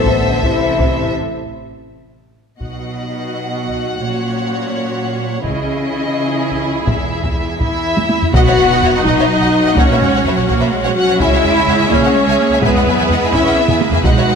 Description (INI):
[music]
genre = cinematic, epic orchestral film score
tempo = 84 BPM (dotted quarters)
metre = 6/8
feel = straight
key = B major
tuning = A4 = 440 Hz
[part]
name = warm symphonic violin section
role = melody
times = 0.0-14.4 s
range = B4 to F#5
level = -22 LUFS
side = left 4 dB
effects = none
[part]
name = warm symphonic violin section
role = second line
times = 0.0-14.3 s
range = G#4 to G#5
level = -23 LUFS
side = left 3 dB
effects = none
[part]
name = rich symphonic viola section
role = accompaniment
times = 0.0-14.4 s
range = B3 to A4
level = -20 LUFS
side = right 1 dB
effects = none
[part]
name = mellow French horn section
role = sustained chords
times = 0.0-14.4 s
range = E3 to D#5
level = -20 LUFS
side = left 3 dB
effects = none
[part]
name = rich symphonic cello section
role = bass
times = 0.0-14.4 s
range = E2 to C#4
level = -21 LUFS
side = right 3 dB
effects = none
[part]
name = warm symphonic double bass section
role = bass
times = 0.0-14.3 s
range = E1 to E2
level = -22 LUFS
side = right 4 dB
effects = none
[part]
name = taiko ensemble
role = drums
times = 0.1-14.4 s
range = none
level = -19 LUFS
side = equal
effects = none
[part]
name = clear symphonic string section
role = sustained chords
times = 8.3-14.4 s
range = C#4 to F#5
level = -20 LUFS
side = equal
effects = none
[part]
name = timpani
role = percussion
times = 8.3-9.0 s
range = B2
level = -22 LUFS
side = equal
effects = none
[part]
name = impact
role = sound effects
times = 8.3-9.8 s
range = none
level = -27 LUFS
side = equal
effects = none
[sound]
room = moderate scoring stage reverb, RT60 1.8 s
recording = none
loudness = -12 LUFS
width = side -6 dB against mid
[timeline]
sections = 0.0-2.6 A section; 2.6-8.3 B section; 8.3-14.4 C section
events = break 1.2-2.6; drum fill 8.0-8.3, 13.7-14.0; impact 8.3-9.8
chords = 0.0 Amadd9; 1.2 N.C.; 2.6 B; 4.0 F#/A#; 5.4 C#madd9; 6.9 E; 8.3 B; 9.8 F#/A#; 11.2 C#m; 12.6 E